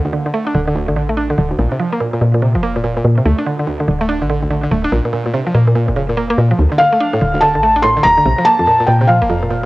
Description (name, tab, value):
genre	IDM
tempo	144 BPM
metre	4/4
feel	swing 62% on 16ths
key	D minor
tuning	A4 = 440 Hz
part	mallet-like synth pluck	arpeggios	0.0-9.7 s	D2 to D4	-17 LUFS	right 1 dB	chorus, cassette tape, analog delay
part	woody FM bass	bass	0.5-9.7 s	D1 to Bb2	-16 LUFS	equal	tube saturation
part	felt-muted upright piano	melody	6.8-9.7 s	F5 to C6	-12 LUFS	equal	vintage 12-bit sampler grit, cassette tape
room	light reverb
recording	home recording on cassette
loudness	-12 LUFS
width	side -19 dB against mid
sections	0.0-9.7 A section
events	none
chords	0.0 D5; 1.6 Bb5; 3.3 D5; 4.9 Bb5; 6.6 Dm; 8.3 Bb5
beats	0.34 0.76 1.17 | 1.59 2.00 2.42 2.84 | 3.25 3.67 4.09 4.50 | 4.92 5.34 5.75 6.17 | 6.59 7.00 7.42 7.84 | 8.26 8.67 9.09 9.51